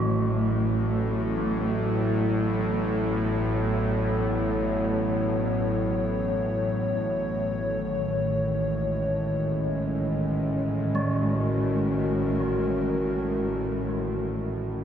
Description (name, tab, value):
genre	dark ambient drone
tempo	free time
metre	none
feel	none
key	unclear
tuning	A4 = 440 Hz
part	dark analog pad	sustained chords	0.0-14.8 s	D#3 to C#5	-27 LUFS	left 1 dB	chorus
part	gamelan-type bronze metallophone	arpeggios	0.0-14.8 s	G#3 to A3	-34 LUFS	equal	tape echo
part	bowed-like drone	drone	0.0-14.8 s	A1 to A2	-27 LUFS	equal	built-in reverb
part	bronze singing bowl	texture	0.0-14.8 s	F#3 to F#4	-40 LUFS	right 7 dB	none
room	moderate huge ambient reverb, RT60 8.3 s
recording	dreamy mix soaked in reverb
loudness	-24 LUFS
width	side -9 dB against mid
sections	0.0-14.8 A section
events	fade-in on analog synth pad 0.0-14.8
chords	0.0 F#m; 7.6 D#m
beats	free time